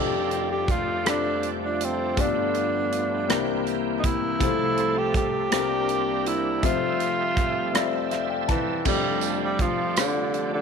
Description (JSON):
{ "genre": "slow gospel", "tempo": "54 BPM (dotted quarters)", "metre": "6/8", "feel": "straight", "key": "F major", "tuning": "A4 = 440 Hz", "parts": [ { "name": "breathy tenor saxophone", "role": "melody", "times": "0.0-10.6 s", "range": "D3 to G4", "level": "-26 LUFS", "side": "right 2 dB", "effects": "none" }, { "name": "clear concert grand piano", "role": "accompaniment", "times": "0.0-10.6 s", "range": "F1 to A5", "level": "-28 LUFS", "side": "left 11 dB", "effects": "none" }, { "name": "bright tonewheel organ", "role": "sustained chords", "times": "0.0-10.6 s", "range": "C3 to E5", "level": "-32 LUFS", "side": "right 12 dB", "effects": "slow rotary speaker, overdrive, chorus vibrato" }, { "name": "warm French horn section", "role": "sustained chords", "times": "0.0-10.6 s", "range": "C3 to E5", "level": "-33 LUFS", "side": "right 1 dB", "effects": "none" }, { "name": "modern studio drum kit", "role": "drums", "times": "0.3-10.5 s", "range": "crash cymbal, hi-hat, kick drum, rim click", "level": "-28 LUFS", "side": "right 2 dB", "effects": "none" }, { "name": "tambourine", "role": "percussion", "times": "8.9-10.3 s", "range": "none", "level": "-35 LUFS", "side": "right 18 dB", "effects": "none" } ], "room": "light reverb, small room ambience", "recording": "1960s-style stereo with parts hard left and right", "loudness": "-22 LUFS", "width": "side -6 dB against mid", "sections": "0.0-8.9 A section; 8.9-10.6 A section", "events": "grand piano fill 7.7-8.9", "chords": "0.0 F69; 2.2 G9; 3.3 C7; 4.4 F/C; 5.5 C9sus4; 6.6 Fmaj7; 8.9 F69" }